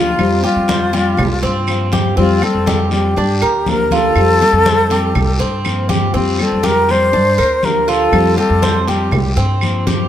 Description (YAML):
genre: latin, Cuban son and guajira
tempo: 121 BPM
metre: 4/4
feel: straight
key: F major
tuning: A4 = 440 Hz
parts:
  - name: breathy concert flute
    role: melody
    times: 0.0-9.4 s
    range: F4 to C5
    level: -16 LUFS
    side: left 1 dB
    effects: none
  - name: fingerpicked steel-string acoustic guitar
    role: accompaniment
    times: 0.0-10.1 s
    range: F3 to G4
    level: -19 LUFS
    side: left 3 dB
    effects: none
  - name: Cuban tres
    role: arpeggios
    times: 0.0-10.1 s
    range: C4 to C5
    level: -20 LUFS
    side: right 3 dB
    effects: none
  - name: upright bass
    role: bass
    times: 0.0-10.1 s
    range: C2 to G2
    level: -18 LUFS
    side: equal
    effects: none
  - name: claves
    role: percussion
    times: 0.2-9.9 s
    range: none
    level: -28 LUFS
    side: right 6 dB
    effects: none
  - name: congas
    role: percussion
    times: 0.2-10.1 s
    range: none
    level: -22 LUFS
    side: left 1 dB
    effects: none
  - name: guiro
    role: percussion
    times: 0.2-10.1 s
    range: none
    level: -28 LUFS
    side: left 3 dB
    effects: none
room: light reverb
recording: none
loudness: -12 LUFS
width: side -10 dB against mid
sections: 0.0-10.1 A section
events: none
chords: 0.2 Fsus2; 1.2 C7sus4; 2.2 Fadd9; 3.2 Gm7; 4.2 Fadd9; 5.2 C7sus4; 6.1 Fsus2; 7.1 Gm7; 8.1 Fadd9; 9.1 C7sus4